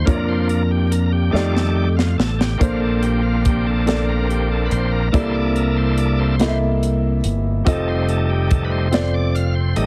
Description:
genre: slow gospel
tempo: 47 BPM (dotted quarters)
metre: 6/8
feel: straight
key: Bb major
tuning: A4 = 440 Hz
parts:
  - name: warm grand piano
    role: accompaniment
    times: 0.0-9.9 s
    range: Bb2 to E5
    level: -25 LUFS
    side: equal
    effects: none
  - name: bright tonewheel organ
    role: sustained chords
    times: 0.0-9.9 s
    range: Eb3 to F5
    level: -27 LUFS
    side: equal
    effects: fast rotary speaker, overdrive
  - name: modern bright fingered electric bass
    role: bass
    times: 0.0-9.9 s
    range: F1 to F2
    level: -22 LUFS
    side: equal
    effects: none
  - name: crisp fusion drum kit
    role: drums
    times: 0.1-9.9 s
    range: hi-hat, kick drum, snare drum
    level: -24 LUFS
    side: equal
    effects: none
room: small room ambience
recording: heavily compressed radio sound, multiband compression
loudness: -19 LUFS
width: mono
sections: 0.0-9.9 A section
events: tonewheel organ solo 0.0-9.9; drum fill 1.3-2.6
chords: 0.1 Bb/F; 1.3 F13; 2.6 Bbmaj9; 5.1 C13; 7.7 F7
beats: | 0.07 1.34 | 2.61 3.87 | 5.14 6.40 | 7.67 8.93

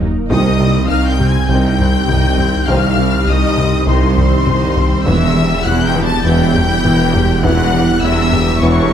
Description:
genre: cinematic, hybrid orchestral and electronic film score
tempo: 101 BPM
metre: 4/4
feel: straight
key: unclear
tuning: A4 = 440 Hz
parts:
  - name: rich symphonic viola section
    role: accompaniment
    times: 0.0-8.9 s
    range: Eb3 to G4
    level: -24 LUFS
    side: right 1 dB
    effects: none
  - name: soft additive organ-like pad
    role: sustained chords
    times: 0.0-8.9 s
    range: Gb3 to Bb4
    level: -21 LUFS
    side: equal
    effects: ensemble chorus, built-in reverb
  - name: harp-like synth pluck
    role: arpeggios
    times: 0.0-8.8 s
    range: C3 to B3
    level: -23 LUFS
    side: right 2 dB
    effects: none
  - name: rubbery square bass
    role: riff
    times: 0.0-8.8 s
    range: C2 to E3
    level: -19 LUFS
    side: left 2 dB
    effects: none
  - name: mellow tuba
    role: bass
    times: 0.0-8.9 s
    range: E1 to Eb2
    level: -21 LUFS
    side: right 4 dB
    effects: none
  - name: rich symphonic double bass section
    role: bass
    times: 0.0-8.9 s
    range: E1 to C2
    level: -22 LUFS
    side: right 3 dB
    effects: none
  - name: saturated sub bass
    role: bass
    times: 0.0-8.9 s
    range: Eb1 to C2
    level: -21 LUFS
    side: equal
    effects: none
  - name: taiko ensemble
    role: drums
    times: 0.0-8.6 s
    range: none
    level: -23 LUFS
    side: equal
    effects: none
  - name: warm symphonic violin section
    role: melody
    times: 0.3-8.9 s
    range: C6 to A6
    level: -21 LUFS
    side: left 4 dB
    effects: none
  - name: rich studio violin section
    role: second line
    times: 0.3-8.9 s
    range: C5 to A5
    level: -22 LUFS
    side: left 4 dB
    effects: none
  - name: mellow French horn section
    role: sustained chords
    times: 0.3-8.8 s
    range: Eb3 to C4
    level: -24 LUFS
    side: left 3 dB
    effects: none
  - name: warm symphonic cello section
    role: bass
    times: 0.3-8.9 s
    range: C2 to E2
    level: -21 LUFS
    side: right 2 dB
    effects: none
room: moderate scoring stage reverb, RT60 1.8 s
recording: none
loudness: -11 LUFS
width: side -9 dB against mid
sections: 0.3-8.9 A section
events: none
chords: 0.3 Cm; 5.1 Em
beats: | 0.30 0.90 1.49 2.09 | 2.68 3.27 3.87 4.46 | 5.06 5.65 6.24 6.84 | 7.43 8.03 8.62

